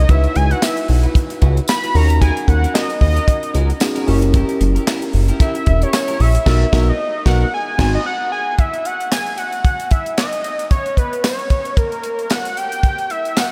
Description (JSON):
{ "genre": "early-eighties boogie funk", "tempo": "113 BPM", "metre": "4/4", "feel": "swing 56% on 16ths", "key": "C# dorian", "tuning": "A4 = 436 Hz", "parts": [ { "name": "fat analog lead", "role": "melody", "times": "0.0-13.5 s", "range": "A#4 to B5", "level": "-24 LUFS", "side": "equal", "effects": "diffuse ambient delay" }, { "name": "mellow tine electric piano", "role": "accompaniment", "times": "0.0-8.0 s", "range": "B#3 to B4", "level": "-26 LUFS", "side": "equal", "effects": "none" }, { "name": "fat analog bass", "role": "bass", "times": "0.0-8.0 s", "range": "E1 to D#2", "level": "-17 LUFS", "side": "equal", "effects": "none" }, { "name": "clean electric guitar", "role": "riff", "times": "0.1-8.0 s", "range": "B3 to C#5", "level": "-31 LUFS", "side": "equal", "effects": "lush chorus" }, { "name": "tight funk drum kit", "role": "drums", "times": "0.1-13.5 s", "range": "crash cymbal, handclaps, hi-hat, kick drum, snare drum", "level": "-20 LUFS", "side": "equal", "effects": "none" }, { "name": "tambourine", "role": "percussion", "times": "0.6-13.5 s", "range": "none", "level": "-35 LUFS", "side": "equal", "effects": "none" } ], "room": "light reverb, studio reverb", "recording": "none", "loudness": "-17 LUFS", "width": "mono", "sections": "0.0-8.6 A section; 8.6-13.5 B section", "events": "analog synth lead solo 0.0-8.6; band accent 6.5-8.6", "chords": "0.1 C#m11; 1.9 D#m7; 4.1 F#7b9; 6.5 Bmaj7; 7.5 G#7; 8.6 N.C." }